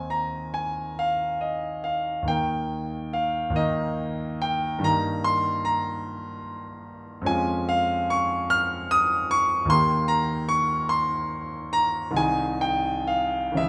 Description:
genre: classical, romantic nocturne for solo piano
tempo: 38-52 BPM (dotted quarters)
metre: 6/8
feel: rubato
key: Eb major, Ab major from 7.3 s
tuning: A4 = 442 Hz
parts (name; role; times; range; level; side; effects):
- warm concert grand piano; solo; 0.0-13.7 s; C2 to F6; -25 LUFS; equal; none
room: moderate recital hall reverb, RT60 1.3 s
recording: none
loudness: -25 LUFS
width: mono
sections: 0.0-13.7 A section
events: none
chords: 0.0 Ab69/Eb; 2.3 Eb; 4.8 Eb/G; 7.3 Db/F; 9.7 Eb; 12.2 Ab/C

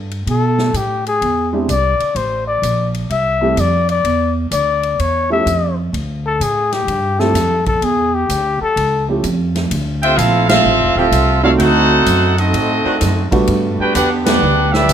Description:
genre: jazz, big band swing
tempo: 127 BPM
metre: 4/4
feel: swing 67% on 8ths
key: unclear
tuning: A4 = 440 Hz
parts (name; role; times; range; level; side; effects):
- upright bass; bass; 0.0-14.9 s; D1 to B2; -18 LUFS; right 1 dB; none
- swinging big-band drum kit; drums; 0.1-14.9 s; hi-hat, kick drum, ride cymbal, snare drum; -24 LUFS; equal; none
- breathy trumpet; melody; 0.3-9.1 s; G4 to E5; -17 LUFS; left 4 dB; none
- warm baby grand piano; accompaniment; 1.5-13.9 s; F3 to D5; -18 LUFS; right 2 dB; none
- brilliant trumpet section; melody; 10.0-14.9 s; C4 to G5; -14 LUFS; equal; none
- warm trombone section; second line; 10.0-14.9 s; G3 to G4; -20 LUFS; right 5 dB; none
- clear saxophone section; sustained chords; 11.0-14.7 s; D3 to G4; -23 LUFS; equal; none
room: light reverb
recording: none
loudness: -13 LUFS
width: side -9 dB against mid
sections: 0.0-9.7 A section; 9.7-14.9 B section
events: trumpet solo 0.0-9.7; band accent 10.4, 14.2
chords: 0.3 Gadd9; 1.2 E7alt; 2.2 Am7; 4.0 Dsus2; 5.0 A7b13; 5.9 Dmadd11; 7.8 Dsus24; 8.8 A7b13; 9.7 Dm9; 11.6 D7b9; 13.5 Gmaj7

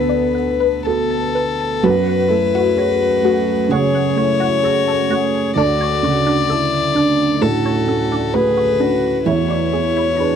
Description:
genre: neoclassical piano and strings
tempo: 65 BPM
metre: 4/4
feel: rubato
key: unclear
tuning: A4 = 442 Hz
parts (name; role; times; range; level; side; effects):
- rich violin; melody; 0.0-10.4 s; A4 to D5; -19 LUFS; left 8 dB; none
- dark cello; second line; 0.0-10.4 s; B3 to G#4; -25 LUFS; right 4 dB; none
- felt-muted upright piano; accompaniment; 0.0-10.4 s; D2 to D5; -18 LUFS; right 5 dB; none
- deep dark ambient pad; sustained chords; 0.0-10.4 s; A3 to C#5; -27 LUFS; left 1 dB; chorus, built-in reverb
- resonant blip pluck; arpeggios; 0.1-10.3 s; D4 to A5; -24 LUFS; left 3 dB; phaser
room: light reverb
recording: dry, close 1970s-style studio recording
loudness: -14 LUFS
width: side -8 dB against mid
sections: 0.0-1.8 A section; 1.8-10.4 B section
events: none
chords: 0.0 Bm7/D; 1.8 F#madd9; 5.6 Dmaj7; 9.3 E7

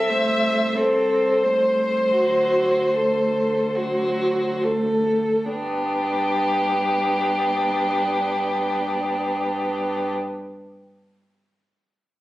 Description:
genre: classical, slow romantic movement for string quartet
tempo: 32-47 BPM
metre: 4/4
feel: rubato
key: G major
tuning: A4 = 443 Hz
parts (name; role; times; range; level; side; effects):
- rich violin; melody; 0.0-10.1 s; G4 to E5; -22 LUFS; left 1 dB; none
- warm violin; second line; 0.0-10.1 s; D4 to C5; -25 LUFS; equal; none
- rich viola; accompaniment; 0.0-10.1 s; F#3 to C4; -27 LUFS; right 2 dB; none
- warm cello; bass; 0.0-10.1 s; C2 to G2; -32 LUFS; right 1 dB; none
room: moderate large studio reverb, RT60 1.4 s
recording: recorded on a phone in the room, studio reverb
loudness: -19 LUFS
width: side -16 dB against mid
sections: 0.0-5.5 A section; 5.5-12.2 B section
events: slowing down 0.0-5.5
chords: 0.0 Am/C; 2.2 D7; 5.5 G

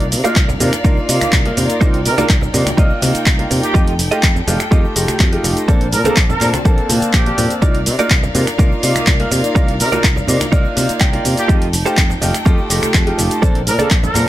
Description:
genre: filtered disco house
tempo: 124 BPM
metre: 4/4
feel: straight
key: C dorian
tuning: A4 = 437 Hz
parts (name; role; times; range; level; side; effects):
- clear baby grand piano; accompaniment; 0.0-14.3 s; A3 to A5; -20 LUFS; equal; phaser, sidechain pumping
- warm chamber violin section; sustained chords; 0.0-14.3 s; C4 to A5; -25 LUFS; left 2 dB; sidechain pumping
- direct-recorded clean electric guitar; riff; 0.0-14.2 s; D4 to G5; -22 LUFS; right 5 dB; wide subtle chorus, sidechain pumping
- fingered electric bass; bass; 0.0-14.2 s; F1 to C3; -20 LUFS; equal; tube saturation, sidechain pumping
- punchy analog drum machine; drums; 0.0-14.3 s; finger snaps, handclaps, hi-hat, shaker; -19 LUFS; equal; sidechain pumping on perc, sidechain pumping on hats
- egg shaker and congas; percussion; 0.0-14.3 s; none; -24 LUFS; right 1 dB; sidechain pumping on perc
- electronic kick drum; drums; 0.4-14.0 s; none; -14 LUFS; equal; overdrive
- warm horn section; melody; 2.1-14.2 s; G4 to Bb4; -23 LUFS; right 2 dB; vintage 12-bit sampler grit, sidechain pumping, tape echo
room: small room ambience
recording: none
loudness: -12 LUFS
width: side -14 dB against mid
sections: 0.0-14.3 A section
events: clean electric guitar fill 10.8-11.5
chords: 0.0 Cm11; 3.8 F9; 5.7 Bbmaj9; 7.6 Cm11; 11.5 F9; 13.4 Bbmaj9

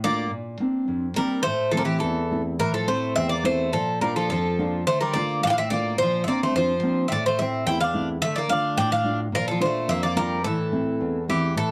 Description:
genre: greek folk, Greek bouzouki band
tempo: 107 BPM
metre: 2/4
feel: straight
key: A phrygian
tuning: A4 = 440 Hz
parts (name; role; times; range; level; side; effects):
- Greek bouzouki; melody; 0.0-11.7 s; G4 to G5; -27 LUFS; equal; none
- Greek bouzouki; second line; 0.0-11.7 s; E3 to E4; -31 LUFS; equal; none
- nylon-string guitar; accompaniment; 0.0-11.7 s; E2 to F4; -29 LUFS; equal; none
room: light reverb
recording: dark, warm production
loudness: -24 LUFS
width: mono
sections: 0.0-2.6 A section; 2.6-11.6 B section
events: speeding up 0.0-11.7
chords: 0.3 Bbadd9; 1.5 Am; 3.7 Bb; 4.9 Dm; 6.0 Bbadd9; 7.1 Am; 8.2 Dm; 9.3 Bb; 10.4 Am

